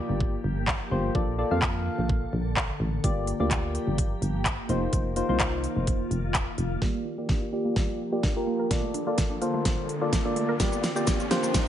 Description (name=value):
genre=dance-pop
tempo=127 BPM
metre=4/4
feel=straight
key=G minor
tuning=A4 = 440 Hz
part: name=soft electric-piano-like synth keys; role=accompaniment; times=0.0-11.7 s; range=Bb3 to F5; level=-29 LUFS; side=left 1 dB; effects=chorus, sidechain pumping, low-pass filter
part: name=glassy FM pad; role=sustained chords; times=0.0-11.7 s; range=D3 to A4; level=-35 LUFS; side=left 1 dB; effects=ensemble chorus, built-in reverb, sidechain pumping, low-pass filter
part: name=solid FM bass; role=bass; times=0.1-6.8 s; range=F1 to F2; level=-29 LUFS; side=equal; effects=sidechain pumping
part: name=pop drum kit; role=drums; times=0.2-11.7 s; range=handclaps, hi-hat, kick drum, shaker, snare drum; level=-27 LUFS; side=equal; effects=none
part: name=mallet-like synth pluck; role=arpeggios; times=6.8-11.6 s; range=Bb2 to Bb4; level=-34 LUFS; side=right 4 dB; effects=chorus, sidechain pumping, low-pass filter, ping-pong delay
part: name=riser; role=sound effects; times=8.5-11.7 s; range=none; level=-36 LUFS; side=right 1 dB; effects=none
room=light reverb, digital ambience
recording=nothing above 10.8 kHz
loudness=-24 LUFS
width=side -10 dB against mid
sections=0.0-6.8 A section; 6.8-11.7 B section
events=build-up 6.8-11.7; drum fill 6.8-11.7; filter sweep 6.8-11.7; riser 8.5-11.7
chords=0.0 Gm7; 1.1 Bbmaj7; 3.0 Gm7; 4.7 F7sus4; 6.8 Gm7; 8.7 Bbmaj7; 10.6 Gm7